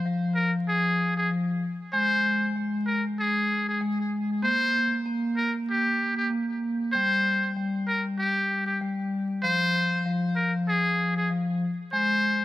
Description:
hip hop; 96 BPM; 4/4; swing 57% on 16ths; A4 = 440 Hz
vibraphone with soft mallets; accompaniment; 0.0-12.4 s; F3 to Bb3; -27 LUFS; left 1 dB
trumpet with metal mute; melody; 0.4-12.4 s; G4 to C5; -26 LUFS; equal; tape echo
studio reverb; vinyl crackle; -23 LUFS; side -15 dB against mid
0.0-12.4 A section

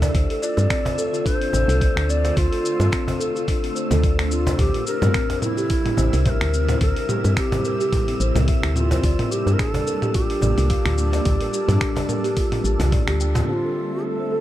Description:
organic downtempo; 108 BPM; 4/4; swing 56% on 16ths; D minor; A4 = 440 Hz
granular cloud pad; sustained chords; 0.0-14.4 s; C3 to A5; -31 LUFS; equal; built-in reverb, sidechain pumping
kalimba; arpeggios; 0.0-14.4 s; C4 to G5; -26 LUFS; left 1 dB; low-pass filter, tape echo
woody FM bass; bass; 0.0-13.4 s; A1 to G2; -20 LUFS; equal; sidechain pumping
dusty soul sampler-style drum kit; drums; 0.0-13.5 s; finger snaps, hi-hat, shaker, toms; -27 LUFS; equal; low-pass filter on perc, low-pass filter on snare, low-pass filter on hats, low-pass filter on toms, low-pass filter on room
cajon; percussion; 0.0-13.5 s; -29 LUFS; right 1 dB
wind-like tuned noise texture; texture; 0.0-14.4 s; E5 to E6; -36 LUFS; right 2 dB; built-in reverb
electronic kick drum; drums; 0.1-13.0 s; -23 LUFS; equal
breathy hollow low Native American-style wooden flute; melody; 0.4-14.4 s; E4 to D5; -26 LUFS; equal; tape echo
felt-muted upright piano; accompaniment; 13.5-14.4 s; D3 to F4; -29 LUFS; right 1 dB; sidechain pumping
digital ambience; dark, warm production; -18 LUFS; side -13 dB against mid
0.0-13.5 A section
band accent 13.1
0.1 Dm7; 4.6 C7; 9.0 Gm7; 13.5 Dm7

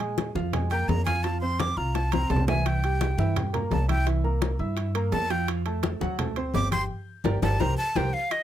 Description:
Afro-Cuban jazz; 170 BPM; 4/4; straight; A4 = 439 Hz
warm concert grand piano; accompaniment; 0.0-8.1 s; E3 to G6; -31 LUFS; right 3 dB
upright bass; bass; 0.0-8.1 s; G1 to Bb2; -27 LUFS; equal
bongos; percussion; 0.0-8.4 s; -34 LUFS; left 9 dB
congas; percussion; 0.0-8.4 s; -32 LUFS; left 3 dB
timbales; percussion; 0.0-8.4 s; -35 LUFS; right 8 dB
breathy bright jazz flute; melody; 0.7-8.4 s; Eb5 to D6; -29 LUFS; equal
little or no reverb; close, detailed microphones; -24 LUFS; side -11 dB against mid
0.0-8.3 A section
flute solo 0.0-8.4; drum fill 1.9-2.7, 6.9-8.3; band accent 6.9-8.3
0.0 Bb5; 1.2 F5; 2.7 C7; 5.5 F; 6.2 D5; 6.9 Gm; 7.6 C5

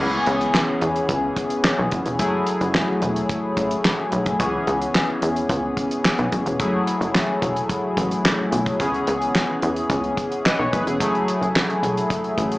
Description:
early-eighties boogie funk; 109 BPM; 4/4; straight; F# minor; A4 = 440 Hz
chorused polysynth; accompaniment; 0.0-12.6 s; E3 to D#5; -22 LUFS; left 1 dB; slapback echo
plucky analog bass; bass; 0.0-12.6 s; E1 to E2; -25 LUFS; equal
damped 70s drum kit; drums; 0.3-12.6 s; handclaps, hi-hat, kick drum, snare drum; -22 LUFS; equal
moderate club reverb, RT60 0.7 s; live gig heard through the venue's PA, club reverb, small speaker sound; -19 LUFS; side -19 dB against mid
0.0-12.6 A section
0.0 C#m7; 2.2 F#m9; 4.4 C#m7; 6.6 F#m9; 8.8 C#m7; 11.0 F#m9

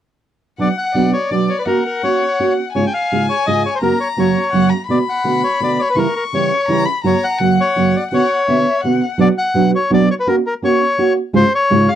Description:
tango; 168 BPM; 3/4; rubato; B harmonic minor; A4 = 443 Hz
bandoneon; melody; 0.6-12.0 s; A#4 to G5; -17 LUFS; left 2 dB
warm violin; second line; 0.6-9.2 s; D5 to C#6; -22 LUFS; left 6 dB
nylon-string guitar; accompaniment; 0.6-11.9 s; F#2 to G#4; -15 LUFS; right 2 dB
light reverb; dry, close 1970s-style studio recording; -13 LUFS; side -10 dB against mid
0.6-9.2 A section; 9.2-12.0 A section
0.6 Bm; 1.7 F#/A#; 2.7 C#/G#; 3.8 F#; 4.9 Bm7; 6.0 C#dim; 7.0 F#; 8.1 Bmadd9; 9.2 Bm; 10.3 F#/A#; 11.3 C#/G#

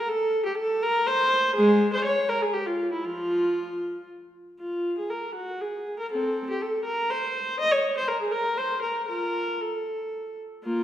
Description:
classical, baroque-style suite movement for unaccompanied viola; 119 BPM; 3/4; rubato; F minor, Bb minor from 4.6 s; A4 = 439 Hz
warm viola; solo; 0.0-10.8 s; F3 to Eb5; -24 LUFS; equal
wet recital hall reverb, RT60 1.8 s; heard from further back in the room; -24 LUFS; side -11 dB against mid
0.0-4.6 A section; 4.6-10.8 A section

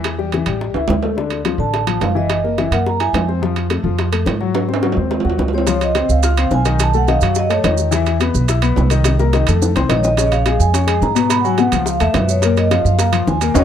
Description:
Afro-Cuban jazz; 213 BPM; 4/4; straight; A4 = 440 Hz
warm concert grand piano; accompaniment; 0.0-13.6 s; Bb2 to F6; -20 LUFS; left 9 dB
upright bass; bass; 0.0-13.6 s; Gb1 to Ab2; -18 LUFS; right 1 dB
timbales; percussion; 0.0-13.6 s; -23 LUFS; right 8 dB
bongos; percussion; 0.1-13.6 s; -24 LUFS; left 4 dB
vibraphone with medium mallets; melody; 1.6-3.3, 5.5-7.8, 10.0-13.6 s; Db5 to Cb6; -20 LUFS; right 4 dB; slapback echo
maracas; percussion; 5.7-13.6 s; -29 LUFS; right 20 dB
small room reverb; dry, close 1970s-style studio recording; -14 LUFS; side -9 dB against mid
0.0-5.7 A section; 5.7-13.6 B section
drum fill 0.7-1.2, 4.5-5.7, 9.1-10.2
0.0 A5; 0.6 A7; 1.2 Dmadd9; 2.3 Gb9; 3.4 F; 4.5 Ab7; 5.7 Dbmaj9; 6.8 Cb9; 7.9 E5; 9.1 Cm7; 9.6 F7; 10.2 Bbm7; 11.3 Abm7; 11.9 Db7alt; 12.4 Gbmaj9

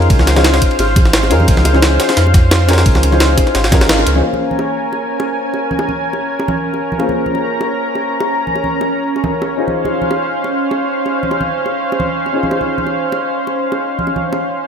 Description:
liquid drum and bass; 174 BPM; 4/4; swing 54% on 16ths; Bb minor; A4 = 439 Hz
dark grand piano; accompaniment; 0.0-14.7 s; Bb3 to C5; -20 LUFS; left 2 dB; vintage 12-bit sampler grit, low-pass filter, dub echo
lush unison pad; sustained chords; 0.0-14.7 s; Db4 to Bb5; -18 LUFS; equal; chorus
warm sub bass; bass; 0.0-4.2 s; Ab1 to F2; -13 LUFS; equal
jungle sampler-style drum kit; drums; 0.0-4.2 s; ride cymbal, snare drum; -20 LUFS; equal; overdrive, high-pass filter on cymbals, high-pass filter on snare
electronic kick drum; drums; 0.1-3.8 s; -12 LUFS; equal
jungle sampler-style drum kit; drums; 0.1-4.1 s; hi-hat, snare drum; -18 LUFS; right 1 dB
bongos and congas; percussion; 0.1-14.4 s; -22 LUFS; right 2 dB
light reverb; -12 LUFS; side -7 dB against mid
0.0-4.2 A section; 4.2-14.7 B section
band accent 3.9; filter sweep on grand piano 4.2-14.7
0.0 Bbm7; 9.6 Dbmaj7

